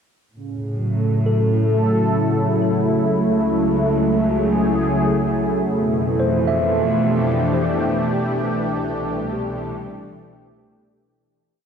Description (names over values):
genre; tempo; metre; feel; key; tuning
ambient; 67 BPM; 3/4; straight; A major; A4 = 442 Hz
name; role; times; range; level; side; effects
analog drone; drone; 4.9-11.3 s; A3; -32 LUFS; right 2 dB; none
warm analog pad; sustained chords; 0.4-11.2 s; B2 to A4; -19 LUFS; equal; chorus
rich studio cello section; bass; 0.4-11.1 s; C2 to A2; -25 LUFS; equal; none
tine electric piano; arpeggios; 1.3-11.6 s; G4 to E5; -27 LUFS; left 1 dB; medium stereo tremolo, ping-pong delay
room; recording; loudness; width
wet huge ambient reverb, RT60 8.3 s; dreamy mix soaked in reverb; -17 LUFS; side -7 dB against mid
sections
0.4-11.2 A section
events
fade-out 7.6-11.2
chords
0.4 A; 3.1 C#m; 5.8 F; 8.5 Cadd9